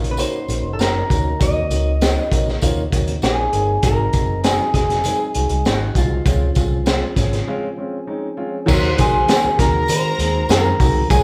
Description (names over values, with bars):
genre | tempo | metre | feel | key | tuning
uptempo 1960s-style soul | 99 BPM | 4/4 | straight | Eb dorian | A4 = 442 Hz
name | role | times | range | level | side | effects
electric guitar at the edge of break-up | melody | 0.0-11.2 s | F4 to Eb5 | -24 LUFS | equal | spring reverb
dark upright piano | accompaniment | 0.0-11.2 s | Gb3 to Ab4 | -27 LUFS | equal | none
tonewheel organ | sustained chords | 0.0-11.2 s | Eb3 to Ab4 | -34 LUFS | equal | none
vintage muted fingered electric bass | bass | 0.0-11.2 s | F1 to Eb3 | -24 LUFS | equal | none
crunchy breakbeat drum kit | drums | 0.0-11.2 s | crash cymbal, hi-hat, kick drum, snare drum | -21 LUFS | equal | none
tambourine | percussion | 0.2-11.2 s | none | -37 LUFS | equal | none
warm symphonic violin section | second line | 8.7-11.2 s | Ab4 to C6 | -28 LUFS | equal | none
room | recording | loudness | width
moderate large studio reverb, RT60 0.8 s | band playing live in one room | -18 LUFS | mono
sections
0.0-8.7 A section; 8.7-11.2 B section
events
break 7.5-8.7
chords
0.0 Ebm7; 3.8 Ab7; 6.3 Dbmaj7; 8.7 Ebm; 9.6 Ab7/Eb